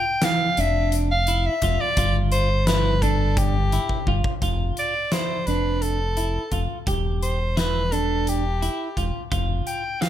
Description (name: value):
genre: progressive instrumental, band music in an uneven meter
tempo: 172 BPM (eighths)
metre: 7/8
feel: straight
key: F lydian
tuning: A4 = 440 Hz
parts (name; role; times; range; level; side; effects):
- clear soprano saxophone; melody; 0.0-10.1 s; G4 to G5; -25 LUFS; equal; tape echo
- clean electric guitar; arpeggios; 0.0-10.1 s; E3 to G4; -29 LUFS; right 3 dB; wide subtle chorus
- huge arena drum kit; drums; 0.2-10.1 s; hi-hat, kick drum, snare drum; -27 LUFS; left 1 dB; none
- round analog bass; bass; 0.6-9.6 s; E1 to G1; -23 LUFS; equal; none
room: light reverb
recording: none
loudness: -20 LUFS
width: side -11 dB against mid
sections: 0.0-4.4 A section; 4.4-10.1 B section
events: drum fill 3.9-4.4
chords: 0.0 Dmadd9/F; 2.0 G5; 4.4 Fmaj7; 6.9 Em7; 9.3 N.C.